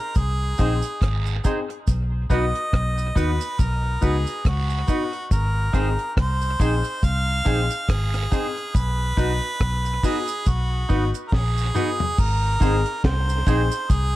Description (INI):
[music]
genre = roots reggae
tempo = 70 BPM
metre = 4/4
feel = swing 57% on 16ths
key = unclear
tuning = A4 = 437 Hz
[part]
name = clear harmonica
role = melody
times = 0.0-14.2 s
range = F#4 to F5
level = -27 LUFS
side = right 1 dB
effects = dub echo
[part]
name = cabasa and guiro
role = percussion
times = 0.1-14.1 s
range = none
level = -39 LUFS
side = right 10 dB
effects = none
[part]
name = vintage muted fingered electric bass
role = bass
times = 0.2-14.2 s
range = Ab1 to D#2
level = -23 LUFS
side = equal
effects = none
[part]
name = deep reggae drum kit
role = drums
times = 0.2-14.1 s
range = crash cymbal, hi-hat, kick drum, rim click, snare drum, toms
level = -22 LUFS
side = equal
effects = none
[part]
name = clean electric guitar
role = accompaniment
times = 0.6-13.6 s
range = Eb4 to C5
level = -31 LUFS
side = right 5 dB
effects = dub echo
[part]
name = clear upright piano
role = stabs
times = 0.6-13.6 s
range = B3 to Ab4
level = -30 LUFS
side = left 6 dB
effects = none
[sound]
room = light reverb, small room ambience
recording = none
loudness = -20 LUFS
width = side -16 dB against mid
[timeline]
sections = 0.0-12.2 A section; 12.2-14.2 B section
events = drum fill 11.3-12.2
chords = 0.0 Ab; 1.9 B; 5.3 Ab; 8.7 B; 12.2 Ab